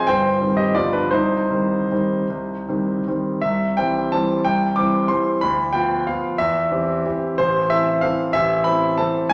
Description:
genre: classical, piano waltz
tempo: 148-200 BPM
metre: 3/4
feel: rubato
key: C minor, C major from 3.4 s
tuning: A4 = 442 Hz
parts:
  - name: warm concert grand piano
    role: solo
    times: 0.0-9.3 s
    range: G1 to D6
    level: -20 LUFS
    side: equal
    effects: none
room: wet recital hall reverb, RT60 1.3 s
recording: none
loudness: -20 LUFS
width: mono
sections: 0.0-3.4 A section; 3.4-9.3 B section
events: none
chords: 0.1 Cm/G; 0.7 G7; 1.1 Cm; 3.4 C; 5.4 Bdim/D; 6.4 C/E; 7.4 Am

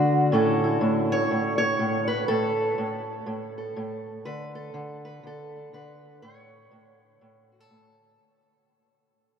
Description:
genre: acoustic country blues, solo or duo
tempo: 122 BPM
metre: 4/4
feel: swing 63% on 8ths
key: unclear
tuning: A4 = 440 Hz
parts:
  - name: fingerpicked steel-string acoustic guitar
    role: solo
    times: 0.0-8.2 s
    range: A2 to C#5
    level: -24 LUFS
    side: equal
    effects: none
room: wet huge ambient reverb, RT60 7.9 s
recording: in a vast, echoing space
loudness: -23 LUFS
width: side -7 dB against mid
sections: 0.0-8.2 A section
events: fade-out 0.0-8.2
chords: 0.3 A; 4.3 N.C.; 6.2 A

